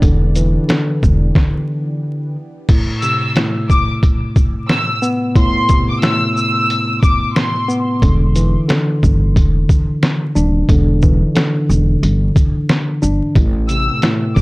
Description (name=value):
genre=hip hop, boom-bap hip-hop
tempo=90 BPM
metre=4/4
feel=swing 63% on 16ths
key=A minor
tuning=A4 = 440 Hz
part: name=tine electric piano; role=accompaniment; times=0.0-14.4 s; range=A2 to D4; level=-18 LUFS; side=equal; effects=cassette tape, high-pass filter, low-pass filter
part: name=lush unison pad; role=sustained chords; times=0.0-2.6, 13.3-14.4 s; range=C3 to G4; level=-32 LUFS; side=equal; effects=chorus, high-pass filter, low-pass filter
part: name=upright bass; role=bass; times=0.0-1.3, 8.0-14.4 s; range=D#1 to C2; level=-15 LUFS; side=equal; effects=none
part: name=trip hop sampler-style drum kit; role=drums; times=0.0-14.4 s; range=crash cymbal, hi-hat, kick drum, shaker, snare drum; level=-14 LUFS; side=equal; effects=none
part: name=warm studio violin section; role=melody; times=3.0-7.7, 13.7-14.4 s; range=C6 to E6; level=-19 LUFS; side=left 1 dB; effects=high-pass filter, low-pass filter, analog delay
room=digital ambience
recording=dry, gritty hardware recording, transformer saturation, vinyl crackle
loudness=-12 LUFS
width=side -22 dB against mid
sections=0.0-2.7 A section; 2.7-14.4 B section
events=stop 1.4-2.7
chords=0.0 Em7; 2.7 Amadd9; 8.0 Em7; 13.4 Am9